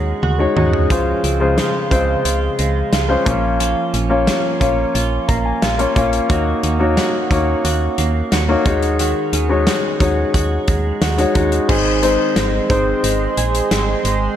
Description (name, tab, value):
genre	1980s-style pop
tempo	89 BPM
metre	4/4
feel	straight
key	unclear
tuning	A4 = 435 Hz
part	warm grand piano	accompaniment	0.0-14.4 s	Db3 to Bb5	-18 LUFS	left 3 dB	none
part	direct-recorded clean electric guitar	riff	0.0-14.4 s	Eb3 to Ab4	-24 LUFS	right 7 dB	lush chorus, tape echo
part	solid FM bass	bass	0.0-14.3 s	Ab1 to Eb2	-20 LUFS	right 1 dB	none
part	modern studio drum kit	drums	0.2-14.2 s	crash cymbal, hi-hat, kick drum, snare drum, toms	-20 LUFS	equal	gated reverb
part	warm analog pad	sustained chords	11.7-14.4 s	Ab4 to C6	-23 LUFS	right 3 dB	chorus
room	light reverb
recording	none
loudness	-14 LUFS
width	side -10 dB against mid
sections	0.0-11.7 A section; 11.7-14.4 B section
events	drum fill 0.2-0.9; grand piano fill 4.9-6.3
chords	0.0 Ab7sus4/Eb; 0.9 Dbmaj7; 3.3 Bbm; 6.3 Ebm7; 8.7 Ab7sus4/Eb; 11.7 Ab